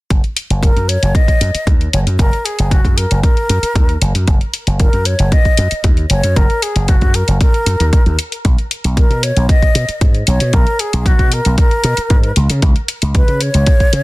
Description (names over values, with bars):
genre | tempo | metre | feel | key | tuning
nu-disco, nu disco | 115 BPM | 4/4 | straight | F# major | A4 = 440 Hz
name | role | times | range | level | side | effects
slap bass with an envelope filter | bass | 0.1-14.0 s | F#1 to C#3 | -15 LUFS | equal | sidechain pumping
electronic hi-hat | drums | 0.1-14.0 s | none | -20 LUFS | left 2 dB | studio ambience
electronic kick drum | drums | 0.1-13.9 s | none | -12 LUFS | equal | studio ambience
breathy concert flute | melody | 0.6-14.0 s | F#4 to D#5 | -20 LUFS | left 1 dB | tape echo
room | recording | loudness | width
little or no reverb | dense, heavily limited modern master | -11 LUFS | side -20 dB against mid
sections
0.1-14.0 A section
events
none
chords
0.1 F#; 8.5 Bmaj7(no3); 12.4 N.C.